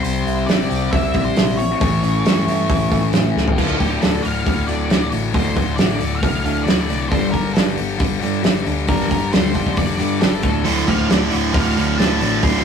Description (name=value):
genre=quiet-loud alternative rock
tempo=136 BPM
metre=4/4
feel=straight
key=D minor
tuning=A4 = 440 Hz
part: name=octave-fuzz lead guitar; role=melody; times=0.0-12.6 s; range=F4 to C6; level=-26 LUFS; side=equal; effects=distortion
part: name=electric guitar through a small old amp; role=arpeggios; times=0.0-10.6 s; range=D2 to G4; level=-24 LUFS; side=equal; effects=none
part: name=thick fuzz guitar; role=riff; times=0.0-12.6 s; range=D2 to C4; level=-22 LUFS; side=left 5 dB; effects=distortion
part: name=hollow-body short-scale fingered electric bass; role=bass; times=0.0-12.6 s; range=D1 to A2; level=-25 LUFS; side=equal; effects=none
part: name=loose indie drum kit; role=drums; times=0.0-12.6 s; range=crash cymbal, hi-hat, kick drum, snare drum, toms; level=-19 LUFS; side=right 1 dB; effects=none
part: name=high-gain distorted guitar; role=riff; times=10.6-12.6 s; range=D2 to D3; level=-19 LUFS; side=right 6 dB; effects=distortion
room=moderate small room reverb, RT60 0.6 s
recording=rough rehearsal-room recording, tube saturation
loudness=-15 LUFS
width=side -7 dB against mid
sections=0.0-3.6 A section; 3.6-12.6 B section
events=drum fill 3.4; lead electric guitar solo 3.6-12.6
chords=0.0 Cadd9; 1.8 A; 3.6 Dm; 7.1 G5; 10.4 Dm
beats=| 0.04 0.48 0.92 1.36 | 1.81 2.25 2.69 3.13 | 3.58 4.02 4.46 4.90 | 5.34 5.79 6.23 6.67 | 7.11 7.56 8.00 8.44 | 8.88 9.32 9.77 10.21 | 10.65 11.09 11.54 11.98 | 12.42